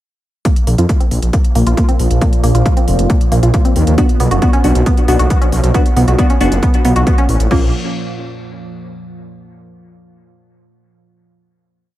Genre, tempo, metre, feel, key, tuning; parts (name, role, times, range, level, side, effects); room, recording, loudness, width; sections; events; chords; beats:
driving peak-time techno; 136 BPM; 4/4; straight; A4 = 440 Hz
analog pluck; riff; 0.5-7.7 s; Bb3 to F#4; -19 LUFS; right 1 dB; chorus, tube saturation, sidechain pumping, dub echo
deep dark ambient pad; drone; 1.5-7.6 s; Bb2 to F3; -22 LUFS; right 1 dB; chorus, built-in reverb, sidechain pumping
electronic kick drum; drums; 0.5-7.6 s; -13 LUFS; equal; overdrive, studio reverb
techno drum kit; drums; 0.5-7.6 s; crash cymbal, hi-hat; -29 LUFS; equal; overdrive, studio reverb
detuned saw bass; bass; 0.7-7.7 s; F1 to F2; -13 LUFS; equal; tube saturation, sidechain pumping
wavetable chord stab; stabs; 4.0-7.7 s; Bb3 to F#4; -19 LUFS; left 2 dB; sidechain pumping, dub echo
light reverb, digital ambience; echo-heavy mix; -10 LUFS; side -14 dB against mid
0.5-7.5 groove; 7.5-9.3 final chord
0.5 Bb5; 4.0 Bm; 7.5 N.C.
| 0.45 0.89 1.33 1.77 | 2.21 2.66 3.10 3.54 | 3.98 4.42 4.86 5.30 | 5.75 6.19 6.63 7.07 | 7.51